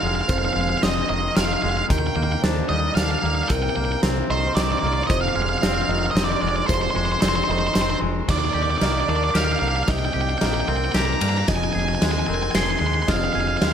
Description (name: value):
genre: post-rock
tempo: 113 BPM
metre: 3/4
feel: straight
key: unclear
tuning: A4 = 440 Hz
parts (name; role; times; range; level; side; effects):
- octave-fuzz lead guitar; melody; 0.0-13.7 s; C5 to C6; -24 LUFS; right 3 dB; distortion, analog delay
- twangy electric guitar; arpeggios; 0.0-13.7 s; F2 to Ab4; -28 LUFS; left 4 dB; analog delay
- growling fingered electric bass; bass; 0.0-13.7 s; F1 to G2; -25 LUFS; equal; overdrive
- felt-muted upright piano; arpeggios; 0.3-13.7 s; Eb4 to Eb5; -31 LUFS; right 1 dB; analog delay
- big rock drum kit; drums; 0.3-13.7 s; crash cymbal, hi-hat, kick drum, ride cymbal, snare drum; -24 LUFS; equal; none
room: light reverb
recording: none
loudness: -19 LUFS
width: side -8 dB against mid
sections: 0.0-8.3 A section; 8.3-13.7 B section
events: build-up 8.3-13.7; drum fill 8.3-13.7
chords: 0.0 Fm7; 1.9 Ebmaj7; 3.5 Cm7; 5.1 Fm7; 8.3 Ebmaj7; 9.9 Cm7; 11.5 Fm7